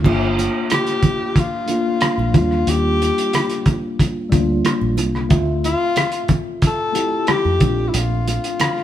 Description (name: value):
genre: lush 1970s-style soul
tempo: 91 BPM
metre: 4/4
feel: straight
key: unclear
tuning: A4 = 439 Hz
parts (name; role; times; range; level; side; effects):
- mellow tine electric piano; accompaniment; 0.0-8.8 s; G3 to E5; -22 LUFS; left 1 dB; slow stereo tremolo
- vintage muted fingered electric bass; bass; 0.0-8.4 s; G1 to F2; -21 LUFS; right 1 dB; none
- cloth-damped thuddy drum kit; drums; 0.0-8.8 s; crash cymbal, hi-hat, kick drum, rim click; -18 LUFS; right 1 dB; none
- congas; percussion; 0.1-8.8 s; none; -29 LUFS; right 8 dB; none
- breathy tenor saxophone; melody; 0.7-8.8 s; E4 to A4; -22 LUFS; left 4 dB; none
room: light reverb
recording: band playing live in one room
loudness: -16 LUFS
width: side -11 dB against mid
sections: 0.0-8.8 A section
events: none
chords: 0.0 Gm9; 2.3 Ebmaj9; 5.3 Dm9; 7.6 Bbmaj9